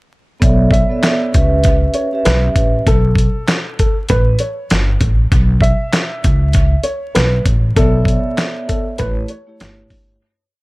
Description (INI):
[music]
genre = hip hop, boom-bap hip-hop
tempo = 98 BPM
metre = 4/4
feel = swing 59% on 16ths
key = unclear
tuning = A4 = 441 Hz
[part]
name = vibraphone with soft mallets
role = accompaniment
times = 0.4-2.8, 7.8-10.2 s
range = A3 to E5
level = -18 LUFS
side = right 1 dB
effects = none
[part]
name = upright bass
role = bass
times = 0.4-10.2 s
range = G1 to C#2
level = -15 LUFS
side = equal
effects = none
[part]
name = dusty soul sampler-style drum kit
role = drums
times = 0.4-10.1 s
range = handclaps, hi-hat, kick drum, snare drum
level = -16 LUFS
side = equal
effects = none
[part]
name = dark upright piano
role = melody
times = 0.7-9.6 s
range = A4 to E5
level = -22 LUFS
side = equal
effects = tape echo
[sound]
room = small room ambience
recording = echo-heavy mix, vinyl crackle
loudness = -12 LUFS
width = side -22 dB against mid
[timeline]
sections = 0.4-10.2 hook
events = fade-out 7.8-10.2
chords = 0.4 Bm11; 1.3 C#m7b5; 2.9 Asus2/B; 4.1 Gadd9; 5.3 Bsus4; 6.2 Aadd9; 7.8 Bm11; 9.0 A7